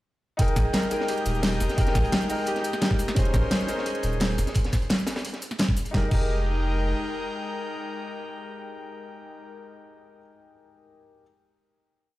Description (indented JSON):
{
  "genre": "liquid drum and bass",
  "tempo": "173 BPM",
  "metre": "4/4",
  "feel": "straight",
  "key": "F minor",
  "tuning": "A4 = 440 Hz",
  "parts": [
    { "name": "warm baby grand piano", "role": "accompaniment", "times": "0.4-11.2 s", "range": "Ab3 to G5", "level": "-32 LUFS", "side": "left 1 dB", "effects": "tape echo" },
    { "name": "airy breathy pad", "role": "sustained chords", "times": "0.4-9.5 s", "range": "Ab3 to G5", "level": "-34 LUFS", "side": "left 2 dB", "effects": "chorus" },
    { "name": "Celtic harp", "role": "arpeggios", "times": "0.4-8.8 s", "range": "Eb4 to Eb5", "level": "-35 LUFS", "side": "equal", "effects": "dub echo" },
    { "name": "saturated sub bass", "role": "bass", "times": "0.4-6.9 s", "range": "Eb1 to Bb1", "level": "-26 LUFS", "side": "equal", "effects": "none" },
    { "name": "crunchy breakbeat drum kit", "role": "drums", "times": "0.4-5.9 s", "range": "hi-hat, snare drum", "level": "-34 LUFS", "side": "equal", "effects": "high-pass filter on hats, high-pass filter on snare, high-pass filter on room" },
    { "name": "electronic kick drum", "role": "drums", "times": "0.4-6.2 s", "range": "none", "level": "-24 LUFS", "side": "equal", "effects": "none" },
    { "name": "pop drum kit", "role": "drums", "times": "0.4-6.2 s", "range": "cabasa, crash cymbal, hi-hat, snare drum", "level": "-28 LUFS", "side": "equal", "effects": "none" }
  ],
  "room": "light reverb, small room ambience",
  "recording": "played on a big sound system in a bare room, stone room reverb",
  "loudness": "-23 LUFS",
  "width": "side -16 dB against mid",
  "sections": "0.4-5.9 drop; 5.9-8.7 final chord",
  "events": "drop 0.4-5.9",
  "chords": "0.4 Fm11; 3.0 Bbm11; 5.9 Fm11"
}